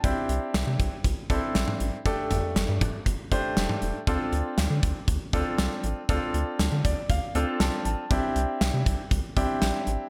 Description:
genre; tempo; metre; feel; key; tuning
synth-pop; 119 BPM; 4/4; straight; D minor; A4 = 440 Hz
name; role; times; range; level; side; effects
bright concert grand piano; accompaniment; 0.0-10.0 s; A3 to A5; -32 LUFS; equal; none
rubbery square bass; bass; 0.0-10.0 s; E1 to D3; -30 LUFS; equal; none
gated 80s drum kit; drums; 0.0-10.0 s; hi-hat, kick drum, snare drum, toms; -30 LUFS; equal; none
room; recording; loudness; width
moderate plate reverb, RT60 1.6 s, studio reverb; dreamy mix soaked in reverb; -27 LUFS; mono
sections
0.0-10.1 A section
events
grand piano fill 6.6-8.1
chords
0.0 Cadd9; 2.1 Gsus2; 4.1 Dm7; 8.1 Cadd9

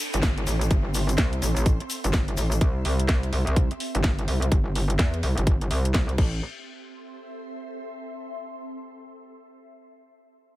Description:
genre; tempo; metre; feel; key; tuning
bass house; 126 BPM; 4/4; swing 61% on 16ths; A minor; A4 = 441 Hz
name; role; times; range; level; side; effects
downlifter; sound effects; 0.0-2.6 s; none; -40 LUFS; left 1 dB; none
ethereal airy pad; texture; 0.0-8.3 s; C4 to C6; -37 LUFS; right 1 dB; ensemble chorus, built-in reverb, phaser, sidechain pumping
metallic wobble bass; bass; 0.1-6.4 s; G1 to E2; -24 LUFS; equal; chorus, overdrive, sidechain pumping
garage drum kit; drums; 0.1-6.3 s; crash cymbal, hi-hat, snare drum; -31 LUFS; equal; none
tube shaker; percussion; 0.1-2.6 s; none; -34 LUFS; left 5 dB; none
electronic kick drum; drums; 0.2-6.3 s; none; -22 LUFS; equal; none
room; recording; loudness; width
digital ambience; none; -22 LUFS; side -16 dB against mid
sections
0.0-6.4 A section; 6.4-8.3 B section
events
fade-out on ambient pad 0.0-6.4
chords
0.0 Am; 2.6 C; 6.2 Am

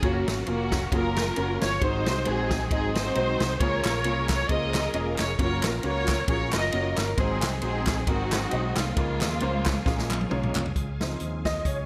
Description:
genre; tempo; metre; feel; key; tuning
uptempo gospel; 134 BPM; 4/4; swing 55% on 8ths; Db major; A4 = 441 Hz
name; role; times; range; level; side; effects
dark symphonic string section; melody; 0.0-10.3 s; Ab3 to Eb5; -31 LUFS; equal; delay
warm upright piano; accompaniment; 0.0-11.9 s; Ab2 to Eb5; -34 LUFS; equal; ensemble chorus
bright tonewheel organ; sustained chords; 0.0-11.9 s; Db3 to F5; -40 LUFS; equal; none
fingered electric bass; bass; 0.0-11.9 s; Fb1 to Eb2; -33 LUFS; equal; none
swinging big-band drum kit; drums; 0.0-11.8 s; hi-hat, kick drum, ride cymbal, snare drum, toms; -32 LUFS; equal; gated reverb
group handclap; percussion; 3.8-10.6 s; none; -37 LUFS; equal; none
room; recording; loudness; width
moderate plate reverb, RT60 2.0 s; bright 1980s-style digital production; -26 LUFS; mono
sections
0.0-10.8 A section; 10.8-11.9 B section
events
drum fill 9.9-10.8; upright piano solo 10.8-11.9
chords
0.0 Gbmaj7; 1.8 Ab7; 3.6 Db6; 5.4 Gbmaj7; 7.2 Ab7; 9.0 Db6; 10.8 Dbmaj7

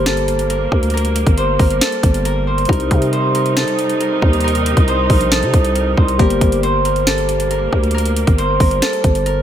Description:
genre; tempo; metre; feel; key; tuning
hip hop, trap; 137 BPM; 4/4; half-time; G minor; A4 = 440 Hz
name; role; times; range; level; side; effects
Celtic harp; melody; 0.0-9.4 s; A4 to C5; -18 LUFS; equal; none
dark baby grand piano; accompaniment; 0.0-9.4 s; C3 to G4; -25 LUFS; left 5 dB; none
dark symphonic string section; sustained chords; 0.0-9.4 s; C3 to Eb4; -23 LUFS; right 3 dB; none
growling 808-style bass; bass; 0.0-9.4 s; G1 to C3; -19 LUFS; equal; none
trap drum kit; drums; 0.1-9.4 s; hi-hat, kick drum, snare drum; -16 LUFS; equal; none
room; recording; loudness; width
light reverb, small room ambience; none; -13 LUFS; side -10 dB against mid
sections
0.0-9.4 A section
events
none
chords
0.0 Gmadd9; 2.7 Cm; 6.2 Gmadd9

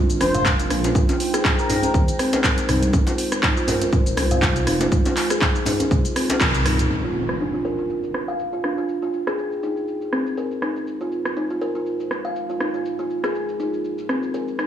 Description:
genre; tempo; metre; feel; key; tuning
afro house; 121 BPM; 4/4; swing 55% on 16ths; F dorian; A4 = 441 Hz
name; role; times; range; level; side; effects
dark analog pad; sustained chords; 0.0-14.7 s; Ab3 to G5; -30 LUFS; right 2 dB; wide subtle chorus, sidechain pumping
dark detuned saw bass; bass; 0.0-6.9 s; Eb1 to Eb2; -24 LUFS; equal; sidechain pumping
house drum kit; drums; 0.1-14.7 s; handclaps, hi-hat, rim click, shaker, toms; -24 LUFS; equal; overdrive, low-pass filter on perc, low-pass filter on hats, low-pass filter on snare, low-pass filter on toms, low-pass filter on room
expressive synth lead; melody; 0.2-1.9 s; Bb4 to C5; -27 LUFS; left 2 dB; wide subtle chorus, dub echo
djembe; percussion; 0.2-6.4 s; none; -28 LUFS; left 2 dB; none
kalimba; arpeggios; 0.3-14.7 s; C4 to F5; -24 LUFS; equal; sidechain pumping, low-pass filter, dub echo
electronic kick drum; drums; 0.5-6.5 s; none; -20 LUFS; equal; overdrive
impact; sound effects; 6.9-8.9 s; none; -30 LUFS; equal; none
room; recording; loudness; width
light reverb; small room ambience; -19 LUFS; side -10 dB against mid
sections
0.0-6.9 A section; 6.9-14.7 B section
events
drum fill 6.4-6.9; band accent 6.4; impact 6.9-8.9; filter sweep on kalimba 6.9-14.7; filter sweep on analog synth pad 6.9-14.7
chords
0.0 Bb7; 1.0 Abmaj7; 2.9 Fm7; 6.9 Bb7; 8.9 Abmaj7; 10.9 Fm7

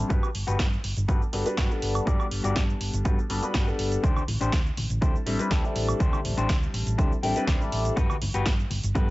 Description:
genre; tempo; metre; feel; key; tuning
filtered disco house; 122 BPM; 4/4; straight; unclear; A4 = 438 Hz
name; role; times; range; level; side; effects
bright baby grand piano; accompaniment; 0.0-9.1 s; G3 to F#5; -30 LUFS; left 2 dB; phaser, sidechain pumping, low-pass filter
electric guitar at the edge of break-up; riff; 0.1-9.1 s; D4 to G5; -32 LUFS; left 3 dB; sidechain pumping, low-pass filter
hollow-body short-scale fingered electric bass; bass; 0.1-9.1 s; G1 to G2; -29 LUFS; equal; sidechain pumping, low-pass filter
electronic kick drum; drums; 0.1-9.1 s; none; -25 LUFS; equal; none
punchy analog drum machine; drums; 0.1-9.1 s; cabasa, hi-hat, snare drum, woodblock; -33 LUFS; right 2 dB; sidechain pumping on hats, sidechain pumping on perc, sidechain pumping on cymbals
tambourine and congas; percussion; 4.0-9.1 s; none; -37 LUFS; left 2 dB; sidechain pumping on perc, low-pass filter on perc
room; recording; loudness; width
little or no reverb; nothing above 7.8 kHz; -23 LUFS; side -19 dB against mid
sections
0.0-9.1 A section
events
filter sweep 0.0-9.1; clean electric guitar fill 7.0-8.0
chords
0.1 Gmaj7; 4.0 D7sus4; 8.0 Gmaj7

